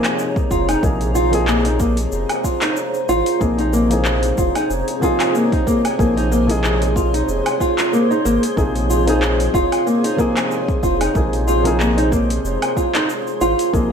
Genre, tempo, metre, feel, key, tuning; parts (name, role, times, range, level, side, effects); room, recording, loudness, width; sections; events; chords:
organic downtempo; 93 BPM; 4/4; swing 55% on 16ths; Bb minor; A4 = 442 Hz
felt-muted upright piano; accompaniment; 0.0-13.9 s; C3 to Ab4; -23 LUFS; left 2 dB; sidechain pumping, ping-pong delay
granular cloud pad; sustained chords; 0.0-13.9 s; Ab4 to C6; -24 LUFS; right 1 dB; built-in reverb, sidechain pumping
nylon-string guitar; arpeggios; 0.0-13.9 s; Bb3 to F4; -19 LUFS; equal; ping-pong delay
deep house drum kit; drums; 0.0-13.9 s; handclaps, hi-hat, shaker, woodblock; -24 LUFS; equal; overdrive
electronic kick drum; drums; 0.4-13.9 s; -22 LUFS; equal; overdrive
warm sub bass; bass; 0.5-13.9 s; F1 to Bb1; -21 LUFS; equal; sidechain pumping
light reverb; -15 LUFS; side -7 dB against mid
0.0-13.9 A section
0.0 Bbm9